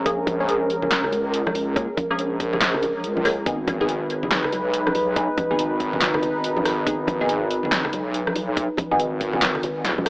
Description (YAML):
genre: deep dubstep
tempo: 141 BPM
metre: 4/4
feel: swing 62% on 16ths, half-time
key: unclear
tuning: A4 = 438 Hz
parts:
  - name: dark analog pad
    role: sustained chords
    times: 0.0-10.1 s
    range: Ab3 to Cb5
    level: -25 LUFS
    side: equal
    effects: chorus, phaser
  - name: wobble bass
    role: bass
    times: 0.0-10.1 s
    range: Eb1 to Db2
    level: -27 LUFS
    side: equal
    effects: chorus
  - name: filtered dub chord stab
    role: stabs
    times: 0.1-9.0 s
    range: Bb3 to Ab4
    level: -27 LUFS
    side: equal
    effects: phaser, analog chorus, dub echo
  - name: deep house drum kit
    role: drums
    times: 0.1-10.1 s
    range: handclaps, hi-hat, rim click, snare drum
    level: -24 LUFS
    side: equal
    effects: overdrive
  - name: electronic kick drum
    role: drums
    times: 0.1-10.1 s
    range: none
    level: -25 LUFS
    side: equal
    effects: none
  - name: bongos and congas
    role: percussion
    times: 0.3-10.0 s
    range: none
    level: -31 LUFS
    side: equal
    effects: dub echo
room: light reverb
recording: dry, gritty hardware recording, AM radio sound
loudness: -20 LUFS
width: side -24 dB against mid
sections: 0.0-10.1 A section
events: none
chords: 0.0 Bbm7; 3.5 Abm